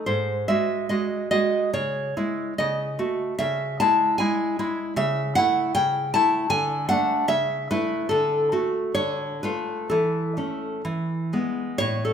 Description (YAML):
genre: romantic piece for solo classical guitar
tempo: 62-80 BPM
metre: 2/4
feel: rubato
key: C# minor, A major from 5.0 s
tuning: A4 = 440 Hz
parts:
  - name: nylon-string guitar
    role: solo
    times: 0.0-12.1 s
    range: G#2 to A5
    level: -22 LUFS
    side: equal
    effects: none
room: moderate recital hall reverb, RT60 1.8 s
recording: minimal, uncompressed stereo recording, faint mains hum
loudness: -22 LUFS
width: side -8 dB against mid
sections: 0.0-11.8 A section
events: none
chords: 0.1 G#7b13; 1.7 C#m; 2.6 F#m/C#; 3.4 C#m; 5.0 A/C#; 6.5 D; 7.3 A/C#; 8.1 D; 8.9 Bm7b5/D; 9.9 A/E; 10.8 E